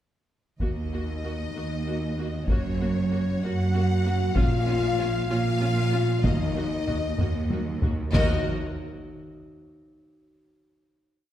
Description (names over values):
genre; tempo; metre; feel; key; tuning
cinematic, epic orchestral film score; 64 BPM (dotted quarters); 6/8; straight; Eb minor; A4 = 440 Hz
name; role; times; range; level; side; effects
warm symphonic violin section; melody; 0.6-8.5 s; Db5 to Gb5; -38 LUFS; left 4 dB; none
rich symphonic violin section; second line; 0.6-8.5 s; Db5 to Gb5; -36 LUFS; left 2 dB; none
rich symphonic viola section; accompaniment; 0.6-8.5 s; Bb3 to Bb4; -35 LUFS; right 1 dB; none
dark French horn section; sustained chords; 0.6-8.4 s; Db4 to Gb4; -31 LUFS; left 6 dB; none
rich symphonic cello section; bass; 0.6-8.5 s; Eb2 to Bb2; -30 LUFS; right 3 dB; none
rich symphonic double bass section; bass; 0.6-8.5 s; Gb1 to Eb2; -29 LUFS; right 2 dB; none
taiko ensemble; drums; 0.6-9.3 s; none; -27 LUFS; equal; none
timpani; percussion; 6.2-8.4 s; Eb3; -32 LUFS; equal; none
room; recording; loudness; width
wet scoring stage reverb, RT60 1.8 s; heard from further back in the room; -23 LUFS; side -12 dB against mid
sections
0.6-8.1 theme; 8.1-10.0 final chord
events
drum fill 7.2-8.1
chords
0.6 Ebm; 2.5 Gb; 4.4 Bbm; 6.2 Ebm